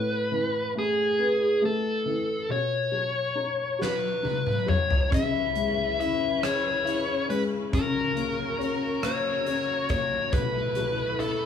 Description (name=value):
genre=six-eight pop ballad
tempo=46 BPM (dotted quarters)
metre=6/8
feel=straight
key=unclear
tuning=A4 = 437 Hz
part: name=dark smooth lead guitar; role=melody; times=0.0-11.5 s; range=G#4 to E5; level=-26 LUFS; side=left 2 dB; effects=overdrive
part: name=dark upright piano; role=accompaniment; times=0.0-11.5 s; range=A2 to G#4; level=-30 LUFS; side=left 2 dB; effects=none
part: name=huge arena drum kit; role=drums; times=3.8-11.4 s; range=hi-hat, kick drum, rim click, snare drum, toms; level=-30 LUFS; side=left 1 dB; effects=none
part: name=rich studio string section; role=sustained chords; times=5.1-11.5 s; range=B2 to B4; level=-33 LUFS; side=left 1 dB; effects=none
room=wet studio reverb, RT60 0.5 s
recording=band playing live in one room, small room ambience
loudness=-24 LUFS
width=side -8 dB against mid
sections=0.0-11.5 A section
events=drum fill 3.8-5.1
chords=0.0 Asus2; 2.5 Badd9; 5.1 C#m7; 7.7 F#/C#; 10.3 B7sus4